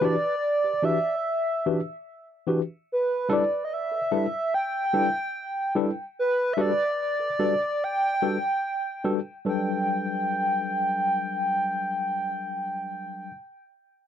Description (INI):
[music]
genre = reggae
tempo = 73 BPM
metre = 4/4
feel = straight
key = G major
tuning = A4 = 440 Hz
[part]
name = reedy FM lead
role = melody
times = 0.0-13.3 s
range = B4 to G5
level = -25 LUFS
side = right 1 dB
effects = chorus, tremolo, tape echo
[part]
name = tine electric piano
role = accompaniment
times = 0.0-13.3 s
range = E3 to B4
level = -27 LUFS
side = left 3 dB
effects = overdrive, fast stereo tremolo
[sound]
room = moderate booth ambience, RT60 0.2 s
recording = dry, close 1970s-style studio recording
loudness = -24 LUFS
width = side -9 dB against mid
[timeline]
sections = 0.0-9.5 A section; 9.5-12.8 B section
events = none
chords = 0.0 Em7; 2.9 G6; 6.2 Gmaj9